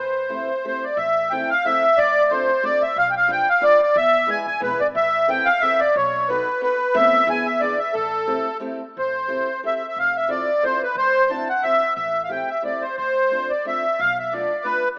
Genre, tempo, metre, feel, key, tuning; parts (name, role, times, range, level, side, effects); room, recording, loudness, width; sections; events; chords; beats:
musette waltz; 180 BPM; 3/4; swing 54% on 8ths, rubato; A minor; A4 = 443 Hz
accordion; melody; 0.0-14.9 s; A4 to A5; -20 LUFS; equal; light tremolo tuning
upright bass; bass; 0.0-14.4 s; D1 to E2; -40 LUFS; equal
fingerpicked steel-string acoustic guitar; accompaniment; 0.3-14.8 s; E3 to C5; -34 LUFS; equal
moderate lush hall reverb, RT60 2.0 s; rough home demo mix, AM radio sound; -20 LUFS; mono
1.0-9.0 A section; 9.0-15.0 B section
0.0 Am7; 1.0 Am; 2.0 Dm7; 3.0 Bdim; 3.9 E; 5.0 Amadd9; 6.0 B7; 6.9 Am/E; 7.3 E7; 7.9 Am7; 10.0 Fmaj7; 11.0 D9; 12.0 Am7; 13.0 Dm7; 14.0 Bm7b5
0.30 0.64 | 0.98 1.32 1.65 | 1.98 2.31 2.64 | 2.96 3.29 3.62 | 3.95 4.28 4.61 | 4.95 5.29 5.62 | 5.95 6.28 6.61 | 6.94 7.27 7.60 | 7.94 8.27 8.61 | 8.96 9.29 9.63 | 9.97 10.30 10.63 | 10.96 11.29 11.62 | 11.95 12.29 12.63 | 12.97 13.31 13.65 | 13.99 14.32 14.65